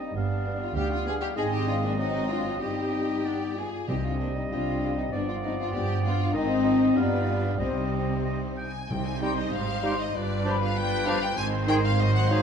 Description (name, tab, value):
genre	quick classical-period movement for symphony orchestra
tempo	97 BPM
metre	2/4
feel	rubato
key	C minor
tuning	A4 = 440 Hz
part	rich studio violin section	melody	0.0-12.4 s	B4 to Ab5	-34 LUFS	left 4 dB	none
part	clear oboe	second line	0.0-12.4 s	G4 to G5	-38 LUFS	right 2 dB	none
part	large flute ensemble	second line	0.0-12.4 s	C5 to C6	-37 LUFS	left 4 dB	none
part	mellow clarinet	second line	0.0-12.4 s	B3 to Eb4	-35 LUFS	left 1 dB	none
part	warm studio violin section	second line	0.0-12.4 s	C4 to C5	-34 LUFS	left 2 dB	none
part	mellow bassoon	accompaniment	0.0-12.4 s	Eb3 to Ab3	-35 LUFS	equal	none
part	rich studio viola section	accompaniment	0.0-12.4 s	Eb3 to G4	-36 LUFS	right 1 dB	none
part	dark French horn section	sustained chords	0.0-12.4 s	Gb3 to F4	-31 LUFS	left 4 dB	none
part	warm studio cello section	bass	0.0-12.4 s	D2 to C3	-32 LUFS	right 3 dB	none
part	warm studio double bass section	bass	0.0-12.4 s	G1 to D2	-32 LUFS	right 3 dB	none
part	timpani	percussion	3.9-4.8, 8.9-9.8 s	C3	-35 LUFS	left 2 dB	none
part	bright trumpet section	stabs	8.9-12.4 s	B4 to C5	-33 LUFS	right 1 dB	none
room	moderate scoring stage reverb, RT60 1.8 s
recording	dark, warm production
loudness	-24 LUFS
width	side -7 dB against mid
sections	0.0-8.9 A section; 8.9-12.4 B section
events	none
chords	0.2 G7; 1.4 Ab; 2.0 Ab7; 2.6 Cm/G; 3.3 G; 3.9 Cm; 5.1 G7; 6.3 Ab; 7.0 G7; 7.6 Cm; 10.2 G7; 11.4 Ab